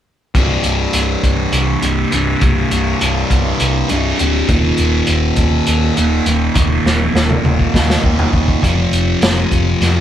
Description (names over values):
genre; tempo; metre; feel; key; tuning
psychedelic rock; 203 BPM (eighths); 7/8; straight; unclear; A4 = 439 Hz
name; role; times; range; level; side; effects
thick fuzz guitar; riff; 0.3-10.0 s; C2 to F3; -16 LUFS; equal; distortion, phaser
hollow-body short-scale picked electric bass; bass; 0.3-10.0 s; C1 to F2; -18 LUFS; equal; none
crunchy breakbeat drum kit; drums; 0.3-10.0 s; hi-hat, kick drum, snare drum, toms; -17 LUFS; equal; none
room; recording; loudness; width
light reverb; band playing live in one room; -12 LUFS; side -10 dB against mid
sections
0.3-10.0 A section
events
drum fill 6.9-8.6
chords
0.3 C5; 4.5 Eb5; 8.6 F5